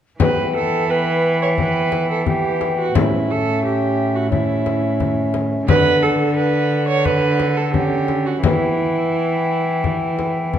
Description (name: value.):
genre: classical, renaissance-style consort dance.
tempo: 87 BPM.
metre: 4/4.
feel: straight.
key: E dorian.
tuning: A4 = 440 Hz.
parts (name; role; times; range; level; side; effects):
mellow hollow tenor recorder; melody; 0.2-10.6 s; E5 to G5; -26 LUFS; left 5 dB; none.
warm viola; second line; 0.2-10.5 s; E4 to C#5; -21 LUFS; right 6 dB; none.
dark bassoon; accompaniment; 0.2-10.6 s; B3 to D4; -23 LUFS; left 2 dB; none.
rich cello; bass; 0.2-10.6 s; A2 to E3; -22 LUFS; right 1 dB; none.
frame drum; percussion; 0.2-10.6 s; none; -22 LUFS; left 5 dB; none.
room: wet recital hall reverb, RT60 1.5 s.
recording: dark, warm production.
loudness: -16 LUFS.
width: side -9 dB against mid.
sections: 0.2-10.6 A section.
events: none.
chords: 0.2 Em; 2.9 A; 5.7 D; 8.4 Em.